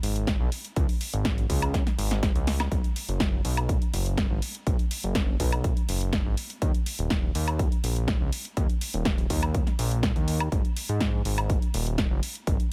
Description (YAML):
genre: progressive house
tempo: 123 BPM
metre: 4/4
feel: straight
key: Eb minor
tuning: A4 = 440 Hz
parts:
  - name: fat analog bass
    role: bass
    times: 0.0-12.6 s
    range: Eb1 to Ab2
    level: -30 LUFS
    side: equal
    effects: sidechain pumping
  - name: house drum kit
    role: drums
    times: 0.0-12.7 s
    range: hi-hat, snare drum, woodblock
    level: -34 LUFS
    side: equal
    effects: none
  - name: electronic kick drum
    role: drums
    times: 0.3-12.6 s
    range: none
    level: -28 LUFS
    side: equal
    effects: none
room: digital ambience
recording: none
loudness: -27 LUFS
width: mono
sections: 0.0-12.7 A section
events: drum fill 1.7-2.7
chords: none